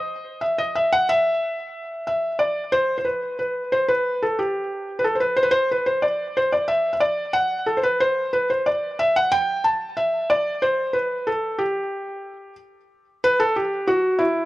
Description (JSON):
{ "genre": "klezmer", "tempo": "91 BPM", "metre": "2/4", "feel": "straight", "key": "G major", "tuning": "A4 = 442 Hz", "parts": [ { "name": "felt-muted upright piano", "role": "solo", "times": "0.0-14.5 s", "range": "E4 to A5", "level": "-20 LUFS", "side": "equal", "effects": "none" } ], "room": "moderate small room reverb, RT60 0.6 s", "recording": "none", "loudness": "-19 LUFS", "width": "side -17 dB against mid", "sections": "0.0-2.4 A section; 2.4-12.9 B section; 12.9-14.5 C section", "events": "none", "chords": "none" }